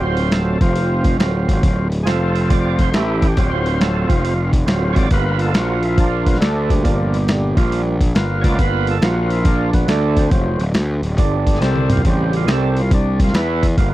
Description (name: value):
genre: blues rock power trio and southern rock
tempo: 138 BPM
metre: 4/4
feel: swing 66% on 8ths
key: unclear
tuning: A4 = 440 Hz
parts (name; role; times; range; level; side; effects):
- overdriven tonewheel organ; sustained chords; 0.0-13.9 s; Bb2 to D5; -20 LUFS; right 2 dB; slow rotary speaker
- fuzz picked electric bass; bass; 0.0-13.9 s; D1 to E2; -18 LUFS; equal; overdrive
- lo-fi sampler-style drum kit; drums; 0.2-13.9 s; hi-hat, kick drum, snare drum, toms; -17 LUFS; equal; overdrive
room: little or no reverb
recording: dry, close 1970s-style studio recording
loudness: -14 LUFS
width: side -16 dB against mid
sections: 0.0-13.9 A section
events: tonewheel organ solo 0.0-13.9; drum fill 11.6-12.0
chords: 0.0 D7#9; 0.5 F5; 1.2 D7#9; 2.1 F5; 2.9 A5; 3.4 D7#9; 4.0 F5; 4.7 D7#9; 5.1 G7#9; 5.6 Bb5; 6.4 D5; 6.9 Gm7; 7.5 Bb5; 8.2 G7#9; 9.0 Bb5; 9.9 D5; 10.3 D7#9; 11.2 G5; 11.6 C5; 12.0 A7#9; 12.5 C5; 13.3 E5